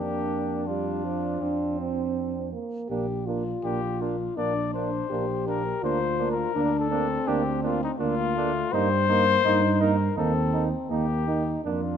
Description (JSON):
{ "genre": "classical, brass quintet", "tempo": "82 BPM", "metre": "4/4", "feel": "straight", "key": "Bb major", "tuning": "A4 = 440 Hz", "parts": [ { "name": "dark trumpet", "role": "melody", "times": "0.0-12.0 s", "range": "Eb4 to D5", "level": "-28 LUFS", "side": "left 8 dB", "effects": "none" }, { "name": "mellow flugelhorn", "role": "second line", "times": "0.0-11.8 s", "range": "C4 to Eb4", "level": "-33 LUFS", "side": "right 8 dB", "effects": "none" }, { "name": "warm French horn", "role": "accompaniment", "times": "0.0-12.0 s", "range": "G3 to G4", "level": "-30 LUFS", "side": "left 3 dB", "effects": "none" }, { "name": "warm euphonium", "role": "accompaniment", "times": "0.0-11.8 s", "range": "F3 to D4", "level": "-33 LUFS", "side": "right 4 dB", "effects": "none" }, { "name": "dark tuba", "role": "bass", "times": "0.0-12.0 s", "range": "Bb1 to G2", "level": "-29 LUFS", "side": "right 4 dB", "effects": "none" } ], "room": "light reverb", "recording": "close, detailed microphones", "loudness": "-23 LUFS", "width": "side -8 dB against mid", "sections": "0.0-12.0 A section", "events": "none", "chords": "0.0 Bb/F; 1.4 F5; 2.9 Bb; 5.8 Bb/D; 8.7 Eb/G; 10.2 Eb" }